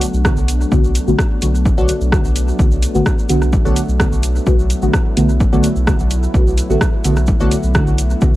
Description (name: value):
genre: dub techno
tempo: 128 BPM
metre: 4/4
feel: straight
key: B minor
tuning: A4 = 440 Hz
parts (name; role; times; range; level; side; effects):
- warbly tape-like pad; sustained chords; 0.0-8.4 s; F#3 to E4; -25 LUFS; left 1 dB; chorus, built-in reverb, sidechain pumping
- wavetable chord stab; riff; 0.0-7.6 s; A4 to F#5; -31 LUFS; left 2 dB; sidechain pumping, dub echo
- deep mellow chord stab; stabs; 0.0-8.3 s; D3 to F#4; -19 LUFS; equal; chorus, phaser, sidechain pumping, dub echo
- warm sub bass; bass; 0.0-8.4 s; A1 to B1; -17 LUFS; equal; tube saturation, sidechain pumping
- deep house drum kit; drums; 0.0-8.1 s; hi-hat, rim click; -23 LUFS; equal; overdrive, dub echo
- egg shaker; percussion; 0.0-8.3 s; none; -32 LUFS; right 2 dB; none
- electronic kick drum; drums; 0.2-8.3 s; none; -16 LUFS; equal; none
room: little or no reverb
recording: dry, gritty hardware recording, transformer saturation, cassette tape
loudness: -12 LUFS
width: side -16 dB against mid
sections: 0.0-8.4 A section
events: filter sweep on synth stab 0.0-8.4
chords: 0.0 Bm7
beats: 0.25 | 0.72 1.19 1.65 2.12 | 2.59 3.06 3.53 4.00 | 4.47 4.94 5.40 5.87 | 6.34 6.81 7.28 7.75 | 8.22